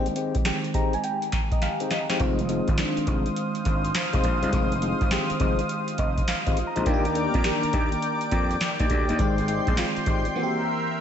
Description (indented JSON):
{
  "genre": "R&B, new jack swing",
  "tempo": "103 BPM",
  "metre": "4/4",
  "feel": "swing 65% on 16ths",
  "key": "F dorian",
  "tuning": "A4 = 441 Hz",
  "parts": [
    { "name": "FM electric piano with soft pad layer", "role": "accompaniment", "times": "0.0-11.0 s", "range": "Eb3 to Bb5", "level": "-29 LUFS", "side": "right 1 dB", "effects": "chorus, phaser, slapback echo" },
    { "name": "mellow tonewheel organ", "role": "stabs", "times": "0.0-10.3 s", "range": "Ab3 to G4", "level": "-31 LUFS", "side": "left 6 dB", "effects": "slow rotary speaker, ping-pong delay, slapback echo" },
    { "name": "booming analog drum machine", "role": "drums", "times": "0.1-10.3 s", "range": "hi-hat, kick drum, snare drum", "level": "-26 LUFS", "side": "equal", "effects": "none" },
    { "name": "lush unison pad", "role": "sustained chords", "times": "2.2-11.0 s", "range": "Ab3 to Eb6", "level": "-29 LUFS", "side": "left 1 dB", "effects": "chorus" },
    { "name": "gritty slap bass", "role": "bass", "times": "2.2-10.2 s", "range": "F1 to F2", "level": "-29 LUFS", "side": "right 1 dB", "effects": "overdrive" }
  ],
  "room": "moderate recital hall reverb, RT60 1.3 s",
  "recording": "big arena sound, nothing above 8.0 kHz",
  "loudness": "-22 LUFS",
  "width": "side -9 dB against mid",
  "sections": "0.0-11.0 A section",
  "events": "FM electric piano fill 0.5-2.2, 5.7-6.9; drum fill 1.6-2.2",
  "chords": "0.0 Abmaj7; 2.2 Fm7; 6.9 Ebmaj7; 9.2 Abmaj7; 10.4 C7",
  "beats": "0.45 1.03 1.62 | 2.20 2.78 3.36 3.95 | 4.53 5.11 5.69 6.28 | 6.86 7.44 8.02 8.61 | 9.19 9.77 10.35 10.94"
}